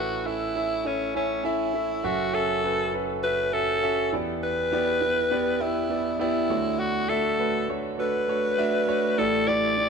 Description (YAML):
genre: pop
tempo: 101 BPM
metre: 4/4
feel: straight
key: unclear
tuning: A4 = 440 Hz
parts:
  - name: breathy alto saxophone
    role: melody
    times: 0.0-9.9 s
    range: C#4 to D5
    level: -25 LUFS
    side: left 2 dB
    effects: ping-pong delay
  - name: clear concert grand piano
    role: accompaniment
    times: 0.0-9.9 s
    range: F#1 to G5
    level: -27 LUFS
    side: right 3 dB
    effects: none
room: moderate lush hall reverb, RT60 2.5 s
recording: none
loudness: -23 LUFS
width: side -5 dB against mid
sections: 0.0-2.0 A section; 2.0-9.9 B section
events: none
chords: 0.0 A; 2.0 F#m7; 4.1 Em7; 6.5 Dmaj7; 9.2 A7sus4